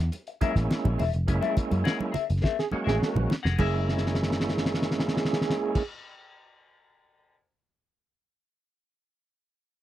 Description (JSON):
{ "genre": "funk", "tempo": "104 BPM", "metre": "4/4", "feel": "straight", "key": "F# mixolydian", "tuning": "A4 = 440 Hz", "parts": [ { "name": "clean electric guitar", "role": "accompaniment", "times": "0.0-6.4 s", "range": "G#4 to F#5", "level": "-32 LUFS", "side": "left 10 dB", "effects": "wah" }, { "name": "vintage muted picked electric bass", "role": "bass", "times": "0.0-5.8 s", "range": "E1 to F#2", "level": "-27 LUFS", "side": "equal", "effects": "none" }, { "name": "cloth-damped thuddy drum kit", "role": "drums", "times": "0.1-7.4 s", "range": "crash cymbal, hi-hat, kick drum, snare drum", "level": "-28 LUFS", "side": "equal", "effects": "none" }, { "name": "congas", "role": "percussion", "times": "0.1-5.8 s", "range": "none", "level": "-34 LUFS", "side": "right 4 dB", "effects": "none" }, { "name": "overdriven tonewheel organ", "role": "stabs", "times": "0.4-5.8 s", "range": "G#3 to F#4", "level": "-30 LUFS", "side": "right 2 dB", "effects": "fast rotary speaker" }, { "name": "breathy trombone", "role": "second line", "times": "2.6-5.8 s", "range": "G#4", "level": "-32 LUFS", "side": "right 7 dB", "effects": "tube saturation" } ], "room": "little or no reverb", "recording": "dry, close 1970s-style studio recording", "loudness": "-24 LUFS", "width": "side -13 dB against mid", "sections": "0.0-3.6 A section; 3.6-5.9 B section", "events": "band accent 1.3-3.6; drum fill 2.4-3.6, 3.9-5.8", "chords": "0.0 F#9" }